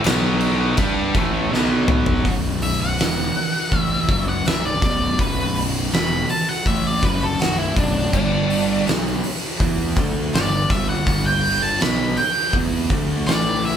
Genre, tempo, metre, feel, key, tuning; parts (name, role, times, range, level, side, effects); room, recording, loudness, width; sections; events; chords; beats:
stoner and doom metal; 82 BPM; 4/4; straight; B minor; A4 = 440 Hz
fuzz guitar; riff; 0.0-13.8 s; B1 to G4; -23 LUFS; right 1 dB; distortion
heavy high-gain guitar; riff; 0.0-2.2 s; A2 to G4; -23 LUFS; right 1 dB; distortion
fuzz fingered electric bass; bass; 0.0-13.8 s; B0 to G2; -26 LUFS; equal; overdrive
oversized low-tuned drum kit; drums; 0.0-13.8 s; crash cymbal, hi-hat, kick drum, snare drum, toms; -22 LUFS; equal
octave-fuzz lead guitar; melody; 2.6-13.8 s; D4 to B5; -22 LUFS; equal; distortion
light reverb; band playing live in one room; -17 LUFS; side -9 dB against mid
0.0-2.3 A section; 2.3-13.8 B section
drum fill 1.5-2.3; lead electric guitar solo 2.3-13.8
0.0 B5; 0.8 A5; 1.5 B5; 8.1 G5
0.05 0.78 1.52 | 2.25 2.99 3.72 4.46 | 5.19 5.93 6.67 7.40 | 8.13 8.87 9.61 10.34 | 11.07 11.81 12.54 13.28